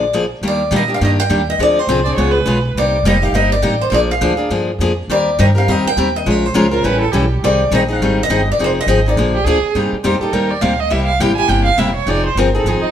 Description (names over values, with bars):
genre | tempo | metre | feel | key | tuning
acoustic string swing (jazz manouche) | 206 BPM | 4/4 | swing 58% on 8ths | Eb major, C minor from 9.8 s | A4 = 443 Hz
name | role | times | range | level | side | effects
picked swing-style acoustic guitar | melody | 0.0-9.5 s | C5 to G5 | -18 LUFS | equal | none
picked steel-string acoustic guitar | accompaniment | 0.0-12.9 s | C3 to Bb4 | -16 LUFS | left 2 dB | none
upright bass | bass | 0.0-12.8 s | E1 to Bb2 | -19 LUFS | equal | none
rich violin | second line | 2.0-2.7, 6.7-12.9 s | Eb4 to Ab5 | -18 LUFS | right 6 dB | none
room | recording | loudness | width
moderate stone room reverb, RT60 1.0 s | band playing live in one room | -13 LUFS | side -9 dB against mid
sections
0.4-9.8 A section; 9.8-12.9 B section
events
violin solo 9.8-12.9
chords
0.4 Ebmaj7; 1.6 Dm7b5; 2.2 Db7; 2.8 Cm9; 3.9 Bb7; 5.1 Eb69; 6.3 Bbm7; 6.8 A7; 7.4 Abmaj7; 8.6 Fm7; 9.2 Bb7; 9.8 Cm7; 10.9 C7; 12.1 Fm9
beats
0.13 | 0.42 0.72 1.01 1.30 | 1.59 1.89 2.18 2.47 | 2.76 3.05 3.35 3.64 | 3.93 4.22 4.51 4.80 | 5.09 5.39 5.68 5.97 | 6.26 6.55 6.84 7.13 | 7.42 7.71 8.01 8.30 | 8.59 8.88 9.17 9.46 | 9.75 10.04 10.34 10.63 | 10.92 11.21 11.50 11.79 | 12.08 12.37 12.66